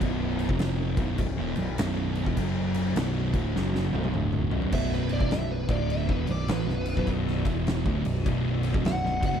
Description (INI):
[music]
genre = stoner and doom metal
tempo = 102 BPM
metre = 4/4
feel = swing 64% on 8ths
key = B minor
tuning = A4 = 440 Hz
[part]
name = string machine, full ensemble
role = sustained chords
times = 0.0-9.4 s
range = F#3 to D5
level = -41 LUFS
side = equal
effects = none
[part]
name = thick fuzz guitar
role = riff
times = 0.0-9.4 s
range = B1 to F#3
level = -32 LUFS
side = left 10 dB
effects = distortion
[part]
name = thick fuzz guitar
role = riff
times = 0.0-9.4 s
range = B1 to F#3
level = -30 LUFS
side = right 9 dB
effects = distortion
[part]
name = growling picked electric bass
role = bass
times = 0.0-9.4 s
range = B0 to A1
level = -32 LUFS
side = equal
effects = overdrive
[part]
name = oversized low-tuned drum kit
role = drums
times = 0.0-9.3 s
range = crash cymbal, kick drum, ride cymbal, snare drum, toms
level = -30 LUFS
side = equal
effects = none
[part]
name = fuzz lead guitar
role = melody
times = 4.7-9.4 s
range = B4 to F#5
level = -32 LUFS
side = equal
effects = distortion, slapback echo
[sound]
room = little or no reverb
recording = none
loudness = -24 LUFS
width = side -8 dB against mid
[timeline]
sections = 0.0-4.7 A section; 4.7-9.4 B section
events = drum fill 3.6-4.7; lead electric guitar solo 4.7-9.4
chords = 0.0 B5; 2.4 F#5; 3.0 Bm